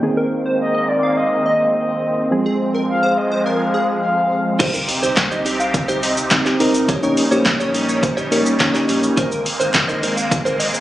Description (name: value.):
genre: dance-pop.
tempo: 105 BPM.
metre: 4/4.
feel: straight.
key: C minor.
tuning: A4 = 440 Hz.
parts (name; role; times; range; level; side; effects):
soft electric-piano-like synth keys; accompaniment; 0.0-9.2 s; Eb3 to Db5; -19 LUFS; equal; chorus, sidechain pumping, low-pass filter.
filtered supersaw swell; sustained chords; 0.0-10.8 s; F2 to Db4; -23 LUFS; right 1 dB; sidechain pumping, low-pass filter.
plucky unison lead; melody; 0.2-10.7 s; Ab4 to F5; -24 LUFS; equal; sidechain pumping, low-pass filter.
mellow horn-like synth lead; melody; 0.6-4.6 s; D5 to F5; -19 LUFS; left 1 dB; chorus, low-pass filter.
direct-recorded clean electric guitar; riff; 4.6-10.8 s; Eb4 to Db5; -23 LUFS; right 2 dB; analog chorus.
sub bass with octave; bass; 4.6-10.7 s; Ab1 to C2; -32 LUFS; right 1 dB; sidechain pumping.
punchy analog drum machine; drums; 4.6-10.8 s; crash cymbal, handclaps, hi-hat, kick drum, shaker, snare drum; -19 LUFS; equal; none.
group handclap; percussion; 5.2-9.9 s; none; -29 LUFS; left 2 dB; none.
room: moderate lush hall reverb, RT60 1.6 s.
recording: recorded on a phone in the room, club reverb, nothing above 10.8 kHz.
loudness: -15 LUFS.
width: side -14 dB against mid.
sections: 0.0-4.6 A section; 4.6-10.8 B section.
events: drop 4.6-10.8.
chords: 0.0 Abadd9; 2.3 Fm; 4.6 Cm; 6.9 Eb7/Bb; 9.2 Abadd9.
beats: | 0.03 0.60 1.17 1.74 | 2.31 2.88 3.46 4.03 | 4.60 5.17 5.74 6.31 | 6.88 7.46 8.03 8.60 | 9.17 9.74 10.31.